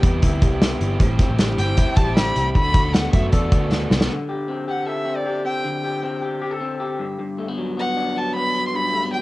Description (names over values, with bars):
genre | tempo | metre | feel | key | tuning
jangly indie pop | 155 BPM | 4/4 | straight | D mixolydian | A4 = 439 Hz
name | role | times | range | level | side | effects
warm violin | melody | 0.0-9.2 s | D5 to C6 | -24 LUFS | equal | none
raw garage guitar | accompaniment | 0.0-4.1 s | A2 to G4 | -28 LUFS | right 3 dB | overdrive, cassette tape
electric guitar through a small old amp | arpeggios | 0.0-9.2 s | G2 to A4 | -25 LUFS | left 2 dB | cassette tape
vintage muted picked electric bass | bass | 0.0-4.1 s | G1 to F#2 | -23 LUFS | equal | none
loose indie drum kit | drums | 0.0-4.1 s | hi-hat, kick drum, snare drum | -18 LUFS | equal | cassette tape
room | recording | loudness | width
little or no reverb | home recording on cassette | -18 LUFS | side -19 dB against mid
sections
0.0-4.1 A section; 4.1-9.2 A section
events
drum fill 3.7-4.1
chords
0.0 Cmaj7; 1.0 Am7; 2.5 D6; 4.1 D7sus4; 7.0 Gmaj7